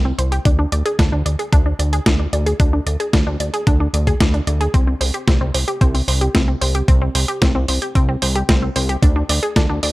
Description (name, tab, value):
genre	italo disco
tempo	112 BPM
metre	4/4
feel	straight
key	unclear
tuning	A4 = 444 Hz
part	wide unison pluck	arpeggios	0.0-9.9 s	C4 to D5	-22 LUFS	equal	cassette tape, tape echo
part	chorused synth bass	bass	0.0-9.9 s	C2 to D2	-19 LUFS	equal	none
part	clean 12-bit digital drum machine	drums	0.2-9.9 s	hi-hat, snare drum	-21 LUFS	equal	small room ambience
part	electronic kick drum	drums	0.5-9.7 s	none	-16 LUFS	equal	small room ambience
room	little or no reverb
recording	dry, gritty hardware recording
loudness	-15 LUFS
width	side -19 dB against mid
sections	0.0-9.9 A section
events	none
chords	0.5 N.C.; 4.7 C5; 9.0 N.C.